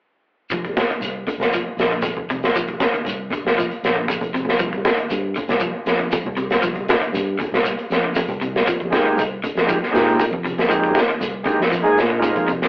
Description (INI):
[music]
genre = afrobeat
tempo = 118 BPM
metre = 4/4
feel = straight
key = F dorian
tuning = A4 = 439 Hz
[part]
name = electric guitar at the edge of break-up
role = arpeggios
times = 0.5-12.6 s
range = C3 to F3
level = -26 LUFS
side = left 1 dB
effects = none
[part]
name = fingered electric bass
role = bass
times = 0.5-12.7 s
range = F1 to Bb2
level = -28 LUFS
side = equal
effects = none
[part]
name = crunchy breakbeat drum kit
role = drums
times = 0.5-12.7 s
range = hi-hat, kick drum, snare drum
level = -20 LUFS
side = equal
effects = none
[part]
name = shekere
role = percussion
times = 0.5-12.6 s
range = none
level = -33 LUFS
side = equal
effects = none
[part]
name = congas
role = percussion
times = 0.8-12.7 s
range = none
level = -24 LUFS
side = equal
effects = none
[part]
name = combo organ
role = accompaniment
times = 8.9-12.5 s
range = Ab3 to Ab4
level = -18 LUFS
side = right 1 dB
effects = none
[sound]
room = moderate small room ambience, RT60 0.5 s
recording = rough rehearsal-room recording, tube saturation, telephone sound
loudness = -17 LUFS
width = side -24 dB against mid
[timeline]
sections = 0.5-12.7 A section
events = none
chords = 0.5 Fsus4; 4.6 Csus2; 8.7 Fm11